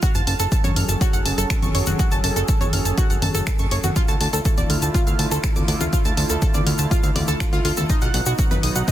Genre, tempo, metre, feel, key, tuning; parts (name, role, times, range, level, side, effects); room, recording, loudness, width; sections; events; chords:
melodic techno; 122 BPM; 4/4; straight; A4 = 440 Hz
warm analog pad; sustained chords; 0.0-8.9 s; D3 to A4; -29 LUFS; right 1 dB; chorus, sidechain pumping
analog pluck; arpeggios; 0.0-8.9 s; D#4 to E#6; -25 LUFS; right 1 dB; wide subtle chorus, sidechain pumping, tape echo
electronic kick drum; drums; 0.0-8.9 s; -21 LUFS; equal; studio reverb
house drum kit; drums; 0.0-8.9 s; congas, finger snaps, hi-hat; -27 LUFS; left 2 dB; studio reverb, soft clipping on snare
tube shaker; percussion; 0.0-8.9 s; -31 LUFS; left 5 dB
fat analog bass; bass; 0.1-8.8 s; D1 to F#2; -23 LUFS; equal; sidechain pumping
little or no reverb; dense, heavily limited modern master; -18 LUFS; side -12 dB against mid
0.0-8.9 A section
drop 0.0-8.9
0.0 F#m; 4.0 Dm; 7.9 B